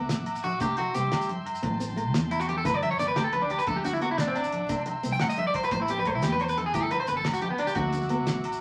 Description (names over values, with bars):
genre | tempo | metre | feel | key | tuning
highlife guitar band | 117 BPM (dotted quarters) | 12/8 | straight | G major | A4 = 439 Hz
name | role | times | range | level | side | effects
nylon-string guitar | accompaniment | 0.0-8.4 s | A3 to E4 | -37 LUFS | equal | none
combo organ | sustained chords | 0.0-8.6 s | E5 to D6 | -43 LUFS | equal | none
upright bass | bass | 0.0-8.6 s | G1 to G2 | -37 LUFS | equal | none
damped 70s drum kit | drums | 0.1-8.5 s | hi-hat, kick drum, snare drum | -36 LUFS | equal | none
congas | percussion | 0.1-8.4 s | none | -38 LUFS | equal | none
maracas | percussion | 0.1-8.6 s | none | -49 LUFS | equal | none
agogo bells | percussion | 0.3-8.6 s | none | -37 LUFS | equal | none
electric guitar at the edge of break-up | arpeggios | 0.4-8.6 s | B3 to G5 | -30 LUFS | equal | none
room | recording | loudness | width
moderate club reverb, RT60 0.6 s | vinyl crackle | -27 LUFS | mono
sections
0.0-8.6 A section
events
clean electric guitar solo 0.0-8.6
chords
0.0 Dadd9; 0.6 C; 1.6 Am7; 2.7 Gadd9; 3.7 Dadd9; 4.7 C; 5.7 Am7; 6.7 Gadd9; 7.8 Dadd9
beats
0.10 | 0.61 1.12 1.64 2.15 | 2.66 3.17 3.68 4.19 | 4.71 5.22 5.73 6.24 | 6.75 7.26 7.77 8.28